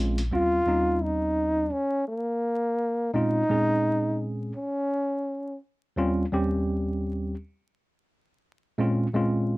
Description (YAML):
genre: hip hop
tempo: 85 BPM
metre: 4/4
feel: swing 60% on 16ths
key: unclear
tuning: A4 = 440 Hz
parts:
  - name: mellow tine electric piano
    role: accompaniment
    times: 0.0-9.6 s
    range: Eb2 to Ab4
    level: -25 LUFS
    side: equal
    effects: medium stereo tremolo
  - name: breathy trombone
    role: melody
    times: 0.3-5.6 s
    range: Bb3 to F4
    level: -25 LUFS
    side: equal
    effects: none
room: little or no reverb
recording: dry, gritty hardware recording, vinyl crackle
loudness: -24 LUFS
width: side -21 dB against mid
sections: 0.3-9.6 A section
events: none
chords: 0.3 Eb13; 3.1 Bbm7; 6.0 Eb13; 8.8 Bbm7